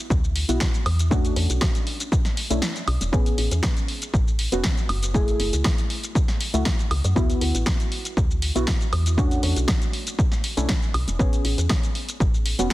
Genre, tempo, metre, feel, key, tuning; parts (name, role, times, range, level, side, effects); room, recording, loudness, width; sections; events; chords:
deep house; 119 BPM; 4/4; swing 53% on 16ths; A major; A4 = 440 Hz
deep mellow chord stab; stabs; 0.0-12.7 s; A3 to G#4; -28 LUFS; equal; chorus, sidechain pumping, analog delay
woody FM bass; bass; 0.1-12.7 s; E1 to F#2; -23 LUFS; equal; sidechain pumping
electronic kick drum; drums; 0.1-12.7 s; -22 LUFS; equal
punchy analog drum machine; drums; 0.1-12.7 s; hi-hat, shaker, snare drum, woodblock; -28 LUFS; equal
digital ambience; dense, heavily limited modern master; -20 LUFS; side -17 dB against mid
0.0-12.7 A section
break 2.6-3.1
0.0 D69; 1.1 E13sus4; 3.1 Amaj9; 4.9 F#m9; 7.2 D69; 9.2 E13sus4; 11.2 Amaj9